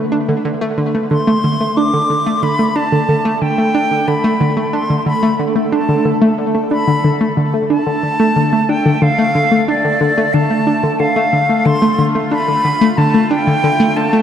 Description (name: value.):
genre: ambient, sequencer-driven space music.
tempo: 91 BPM.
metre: 4/4.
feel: straight.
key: D dorian.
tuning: A4 = 443 Hz.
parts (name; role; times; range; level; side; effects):
analog pluck; riff; 0.0-14.2 s; D3 to D4; -14 LUFS; equal; chorus, tape echo.
bubbling stepped-filter texture; texture; 0.0-14.2 s; A3 to B4; -23 LUFS; right 2 dB; chorus, built-in reverb.
bright silver concert flute; melody; 1.1-14.2 s; D5 to D6; -17 LUFS; equal; tape echo.
room: wet lush hall reverb, RT60 2.9 s.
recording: dark, warm production.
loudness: -12 LUFS.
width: side -9 dB against mid.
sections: 0.0-14.2 A section.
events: none.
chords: 0.0 Dm.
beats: 0.45 | 1.11 1.77 2.43 3.09 | 3.75 4.40 5.06 5.72 | 6.38 7.04 7.70 8.36 | 9.02 9.68 10.34 11.00 | 11.66 12.32 12.98 13.63.